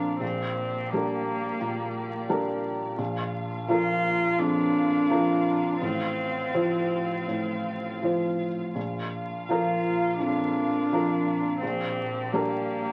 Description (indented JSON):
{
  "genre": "neoclassical piano and strings",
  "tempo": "81-88 BPM",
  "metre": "4/4",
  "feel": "rubato",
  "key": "Bb major",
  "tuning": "A4 = 436 Hz",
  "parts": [
    { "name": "muted cello", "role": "second line", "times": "0.0-12.9 s", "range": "Bb3 to F4", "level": "-30 LUFS", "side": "equal", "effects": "none" },
    { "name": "felt-muted upright piano", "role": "accompaniment", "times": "0.0-12.9 s", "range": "A1 to C5", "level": "-30 LUFS", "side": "equal", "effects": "none" },
    { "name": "muted studio string section", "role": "sustained chords", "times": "0.0-12.9 s", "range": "Bb3 to F5", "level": "-39 LUFS", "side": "equal", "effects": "none" },
    { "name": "muted double bass", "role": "bass", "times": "0.0-12.9 s", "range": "A1 to Bb1", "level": "-45 LUFS", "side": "equal", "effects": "none" }
  ],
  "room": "moderate club reverb, RT60 0.6 s",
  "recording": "very old 78 rpm record, vinyl crackle",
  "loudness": "-27 LUFS",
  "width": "mono",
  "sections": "0.0-12.9 A section",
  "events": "none",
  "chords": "0.2 Gm/Bb; 3.0 Bb; 5.8 F/A; 8.8 Bb; 11.6 Gm/Bb",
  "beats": "| 0.21 0.92 1.60 2.29 | 2.99 3.69 4.39 5.09 | 5.81 6.55 7.29 8.02 | 8.76 9.48 10.20 10.92 | 11.62 12.32"
}